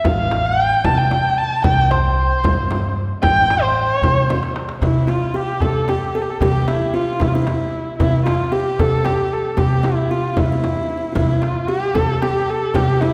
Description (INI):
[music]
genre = Persian modal ensemble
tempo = 76 BPM (dotted quarters)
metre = 6/8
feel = straight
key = C dastgah mahur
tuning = A4 = 440 Hz
[part]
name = dark kamancheh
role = melody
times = 0.0-13.1 s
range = E4 to A5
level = -22 LUFS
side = equal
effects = none
[part]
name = upright bass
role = bass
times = 0.0-13.1 s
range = A1 to C3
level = -23 LUFS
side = equal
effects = none
[part]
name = frame drum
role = percussion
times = 0.0-13.1 s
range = none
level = -28 LUFS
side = equal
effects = none
[part]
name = tombak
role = percussion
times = 0.0-13.1 s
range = none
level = -28 LUFS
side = equal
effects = none
[part]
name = buzzing kalimba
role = second line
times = 4.8-13.1 s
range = E4 to A4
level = -26 LUFS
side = equal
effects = none
[sound]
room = wet concert hall reverb, RT60 2.0 s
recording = recorded in a church or concert hall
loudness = -18 LUFS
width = mono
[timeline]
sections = 0.0-4.8 A section; 4.8-13.1 B section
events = drum fill 4.3-4.8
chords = none